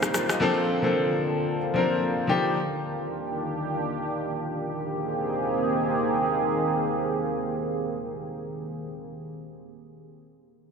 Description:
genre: amapiano.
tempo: free time.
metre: none.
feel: none.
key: Ab lydian.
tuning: A4 = 441 Hz.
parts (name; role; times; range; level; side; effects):
warm grand piano; accompaniment; 0.0-2.6 s; F3 to Eb5; -24 LUFS; left 2 dB; lush chorus.
deep dark ambient pad; sustained chords; 0.0-8.8 s; D3 to A5; -27 LUFS; right 1 dB; chorus, built-in reverb.
room: wet lush hall reverb, RT60 2.6 s.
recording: bright 1980s-style digital production.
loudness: -24 LUFS.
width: side -5 dB against mid.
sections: 0.0-4.7 A section; 4.7-9.0 B section.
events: none.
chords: 0.4 Bbmaj9; 2.3 Ebmaj9; 4.7 Abmaj9.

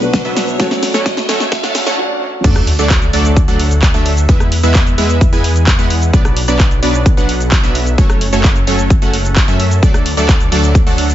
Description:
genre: EDM, festival progressive house.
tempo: 130 BPM.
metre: 4/4.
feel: straight.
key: unclear.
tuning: A4 = 438 Hz.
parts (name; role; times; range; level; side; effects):
felt-muted upright piano; accompaniment; 0.0-2.5 s; B2 to F#4; -22 LUFS; left 1 dB; sidechain pumping, dub echo.
supersaw stab; riff; 0.0-11.1 s; F#3 to G#5; -17 LUFS; right 1 dB; sidechain pumping, dub echo.
wide detuned saw bass; bass; 0.0-11.1 s; F#1 to F#2; -15 LUFS; equal; chorus, sidechain pumping.
big-room dance drum kit; drums; 0.0-11.1 s; cabasa, crash cymbal, handclaps, hi-hat, rim click, snare drum; -19 LUFS; equal; none.
riser, swell and sub drop; sound effects; 0.0-4.3 s; none; -21 LUFS; equal; none.
electronic kick drum; drums; 0.1-10.8 s; none; -11 LUFS; equal; overdrive.
room: light reverb.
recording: high-pass filter, nothing above 7.7 kHz.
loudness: -10 LUFS.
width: side -12 dB against mid.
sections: 0.0-2.4 A section; 2.4-11.1 B section.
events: build-up 0.0-2.4; drum fill 0.0-2.0; riser 0.0-2.0; filter sweep on supersaw synth 0.0-2.4; swell 1.5-2.4; break 2.0-2.4; drop 2.4-11.1; impact 2.4-4.3.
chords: 0.0 Bm; 0.6 F#m; 2.4 D; 4.3 E; 6.1 Bm; 8.0 F#m; 9.8 D.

